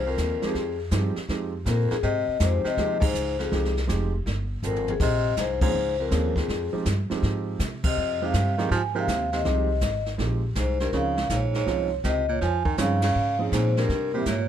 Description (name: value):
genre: jazz, small-group swing and bop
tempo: 162 BPM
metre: 4/4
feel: swing 66% on 8ths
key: F minor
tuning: A4 = 439 Hz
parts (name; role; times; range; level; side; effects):
- vibraphone with medium mallets; melody; 0.0-14.5 s; Ab4 to Ab5; -27 LUFS; left 4 dB; none
- warm baritone saxophone; second line; 0.0-14.5 s; F2 to F3; -31 LUFS; right 5 dB; none
- upright bass; bass; 0.0-14.5 s; F1 to C3; -27 LUFS; equal; none
- jazz brush drum kit; drums; 0.2-14.5 s; brushed snare drum, crash cymbal, hi-hat, kick drum, ride cymbal, snare drum, toms; -30 LUFS; equal; none
- warm grand piano; accompaniment; 0.4-14.3 s; F3 to Bb4; -30 LUFS; right 5 dB; none
room: little or no reverb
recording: none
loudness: -22 LUFS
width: side -10 dB against mid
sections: 0.0-14.5 A section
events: band accent 3.0, 5.6, 7.8, 13.0; drum fill 4.6-5.0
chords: 0.0 Fm7; 5.0 Bbm9; 6.5 Fm7; 10.9 Dbmaj7; 13.9 C7